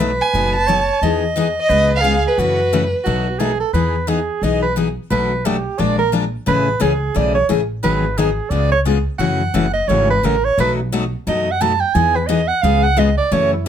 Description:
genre	acoustic string swing (jazz manouche)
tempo	176 BPM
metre	4/4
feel	swing 61% on 8ths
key	E major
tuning	A4 = 441 Hz
part	warm soprano saxophone	second line	0.0-13.7 s	E4 to A5	-19 LUFS	right 4 dB	none
part	picked steel-string acoustic guitar	accompaniment	0.0-13.7 s	B2 to A#4	-19 LUFS	left 5 dB	none
part	upright bass	bass	0.0-13.7 s	F#1 to F#2	-22 LUFS	right 1 dB	none
part	warm violin	melody	0.2-3.4 s	B4 to A5	-18 LUFS	right 1 dB	plate reverb
room	moderate studio reverb, RT60 0.6 s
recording	none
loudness	-15 LUFS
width	side -9 dB against mid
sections	0.0-3.7 A section; 3.7-13.7 B section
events	soprano saxophone solo 3.7-13.7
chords	0.0 B7; 1.0 Emaj7; 1.7 C#7; 2.4 F#m7; 3.1 B7; 3.7 Emaj7; 5.1 Bm7; 5.8 A#7; 6.5 Amaj7; 7.8 G#m7; 8.5 C#7; 9.2 F#m7; 10.6 B7; 11.9 Emaj7; 12.6 C#7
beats	0.33 0.67 | 1.01 1.35 1.69 2.04 | 2.38 2.72 3.06 3.40 | 3.74 4.08 4.42 4.76 | 5.10 5.44 5.78 6.12 | 6.46 6.81 7.15 7.49 | 7.83 8.18 8.52 8.86 | 9.20 9.55 9.89 10.23 | 10.57 10.92 11.26 11.61 | 11.95 12.29 12.63 12.98 | 13.32 13.66

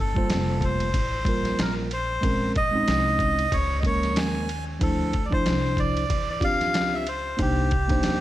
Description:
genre	hip hop, jazz-hop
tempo	93 BPM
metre	4/4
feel	swing 57% on 16ths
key	G minor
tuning	A4 = 440 Hz
part	melodica	melody	0.0-8.2 s	G4 to Ab5	-26 LUFS	equal	none
part	upright bass	bass	0.0-8.2 s	F1 to E2	-29 LUFS	equal	none
part	mellow tine electric piano	accompaniment	0.1-8.2 s	F3 to C5	-28 LUFS	right 1 dB	none
part	trip hop sampler-style drum kit	drums	0.2-8.2 s	hi-hat, kick drum, ride cymbal, snare drum	-27 LUFS	equal	none
room	light reverb, digital ambience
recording	none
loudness	-22 LUFS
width	side -14 dB against mid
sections	0.0-8.2 A section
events	none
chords	0.0 Gm9; 2.2 Bbm9; 4.8 Dm9; 7.4 Cm9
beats	0.29 0.94 1.58 | 2.23 2.88 3.52 4.17 | 4.81 5.46 6.10 6.75 | 7.39 8.04

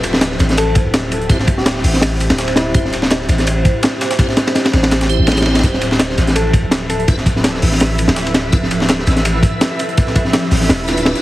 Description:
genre	drum and bass, jungle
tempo	166 BPM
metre	4/4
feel	swing 53% on 16ths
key	D dorian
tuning	A4 = 439 Hz
part	long sustained 808-style bass	bass	0.0-11.1 s	D1 to A1	-18 LUFS	equal	none
part	breakbeat sampler-style drum kit	drums	0.0-11.2 s	hi-hat, snare drum	-26 LUFS	equal	high-pass filter on hats, high-pass filter on snare
part	crunchy breakbeat drum kit	drums	0.0-11.2 s	hi-hat, kick drum, ride cymbal, snare drum	-14 LUFS	equal	none
part	soft struck synth lead	melody	0.6-2.8, 6.4-7.0 s	E4 to A4	-24 LUFS	left 2 dB	chorus, phaser, dub echo
part	tonewheel organ	stabs	1.3-8.6, 10.9-11.2 s	C4 to C5	-25 LUFS	right 2 dB	chorus vibrato, slow rotary speaker, dub echo
part	twinkling granular texture	texture	6.4-11.2 s	E4 to E5	-26 LUFS	equal	built-in reverb
room	light reverb, small room ambience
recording	heavily compressed radio sound, multiband compression, vinyl crackle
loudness	-12 LUFS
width	side -16 dB against mid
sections	0.0-11.2 A section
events	none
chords	0.0 C/D; 5.6 Dm69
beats	0.21 0.58 0.94 | 1.30 1.66 2.02 2.38 | 2.74 3.11 3.47 3.83 | 4.19 4.55 4.91 5.27 | 5.64 6.00 6.36 6.72 | 7.08 7.44 7.80 8.17 | 8.53 8.89 9.25 9.61 | 9.97 10.34 10.70 11.06

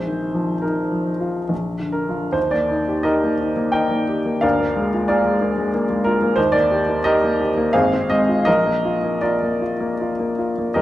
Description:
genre	classical, romantic character piece for solo piano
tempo	66-95 BPM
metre	3/4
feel	rubato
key	Eb major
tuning	A4 = 440 Hz
part	clear upright piano	solo	0.0-10.8 s	G1 to G5	-17 LUFS	equal	none
room	wet recital hall reverb, RT60 1.6 s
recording	none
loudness	-17 LUFS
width	side -14 dB against mid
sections	0.0-2.4 A section; 2.4-10.8 B section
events	none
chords	0.0 Bbsus4; 1.5 Bb; 2.4 Eb; 4.4 Bb7/D; 6.4 Eb; 7.7 Fm/Ab; 8.5 Bb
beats	0.64 1.50 | 2.36 3.07 3.75 | 4.44 5.09 5.73 | 6.37 7.04 7.73 | 8.46 9.22 9.99 | 10.75

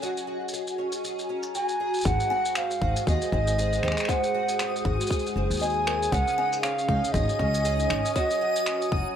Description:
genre	folktronica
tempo	118 BPM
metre	4/4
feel	swing 56% on 16ths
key	Ab mixolydian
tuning	A4 = 440 Hz
part	warbly tape-like pad	sustained chords	0.0-9.2 s	Ab3 to Bb5	-33 LUFS	equal	chorus, built-in reverb, plate reverb
part	picked twelve-string acoustic guitar	arpeggios	0.0-9.2 s	Ab2 to Ab4	-32 LUFS	equal	ensemble chorus, plate reverb
part	shaker and finger snaps	drums	0.0-8.9 s	none	-33 LUFS	left 1 dB	none
part	bright baroque flute	melody	1.6-8.9 s	Eb5 to Ab5	-27 LUFS	right 2 dB	digital delay, plate reverb
part	kalimba	second line	2.1-8.4 s	Gb4 to Ab5	-35 LUFS	left 3 dB	ping-pong delay, plate reverb
part	upright bass	bass	2.1-9.0 s	Gb1 to Eb2	-28 LUFS	left 1 dB	none
part	electronic kick drum	drums	2.1-9.0 s	none	-29 LUFS	left 1 dB	none
part	backwards swelling texture	texture	2.1-9.2 s	Eb6	-38 LUFS	left 3 dB	built-in reverb, plate reverb
room	moderate studio ambience, RT60 0.5 s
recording	none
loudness	-23 LUFS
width	side -9 dB against mid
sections	0.0-2.1 A section; 2.1-9.2 B section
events	none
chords	0.0 Gbadd9; 2.1 Ab7; 6.1 Dbsus2; 8.2 Gbadd9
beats	| 0.02 0.53 1.04 1.55 | 2.05 2.56 3.07 3.58 | 4.09 4.60 5.11 5.61 | 6.12 6.63 7.14 7.65 | 8.16 8.66

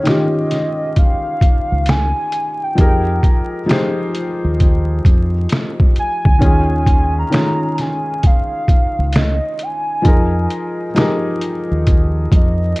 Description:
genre	lo-fi hip hop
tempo	66 BPM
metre	4/4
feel	swing 63% on 16ths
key	F minor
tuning	A4 = 440 Hz
part	warbly nostalgic lead	melody	0.0-12.8 s	Eb5 to Bb5	-22 LUFS	equal	chorus, tremolo
part	felt-muted upright piano	accompaniment	0.0-12.8 s	Eb3 to C5	-20 LUFS	left 1 dB	cassette tape
part	trip hop sampler-style drum kit	drums	0.1-12.8 s	finger snaps, hi-hat, kick drum, snare drum	-14 LUFS	equal	none
part	deep dub fingered electric bass	bass	1.7-12.7 s	Db2 to F2	-17 LUFS	equal	none
room	little or no reverb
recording	dark, warm production, vinyl crackle, nothing above 10.4 kHz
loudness	-13 LUFS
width	side -22 dB against mid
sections	0.0-12.8 A section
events	none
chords	0.0 Eb9sus4; 2.8 Fm11; 6.4 Eb9sus4; 10.1 Fm11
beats	0.06 0.96 1.87 | 2.78 3.69 4.60 5.51 | 6.42 7.33 8.24 9.15 | 10.05 10.96 11.87 12.78

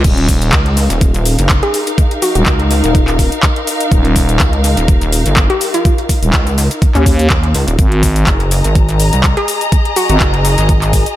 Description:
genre	bass house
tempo	124 BPM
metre	4/4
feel	swing 54% on 16ths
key	Eb minor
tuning	A4 = 438 Hz
part	growling FM bass	bass	0.0-10.2 s	Eb1 to Eb2	-12 LUFS	equal	overdrive, sidechain pumping
part	electronic kick drum	drums	0.0-11.0 s	none	-13 LUFS	equal	overdrive
part	garage drum kit	drums	0.0-11.2 s	crash cymbal, handclaps, hi-hat, shaker	-18 LUFS	left 1 dB	none
part	dark studio string section	texture	0.0-11.2 s	Db4 to Bb5	-19 LUFS	left 2 dB	sidechain pumping
part	pulsing pluck wobble bass	bass	0.5-11.0 s	Eb1 to Eb2	-14 LUFS	equal	chorus, overdrive, sidechain pumping
part	hollow square pluck	melody	1.6-2.4, 5.5-10.2 s	Db4 to Ab4	-20 LUFS	equal	chorus, cassette tape, tape echo
room	light reverb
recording	none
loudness	-10 LUFS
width	side -14 dB against mid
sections	0.0-11.2 A section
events	none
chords	0.0 Eb5; 3.9 Eb7; 7.8 Ab5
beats	| 0.04 0.53 1.01 1.50 | 1.98 2.46 2.95 3.43 | 3.92 4.40 4.88 5.37 | 5.85 6.33 6.82 7.30 | 7.79 8.27 8.76 9.24 | 9.72 10.21 10.69

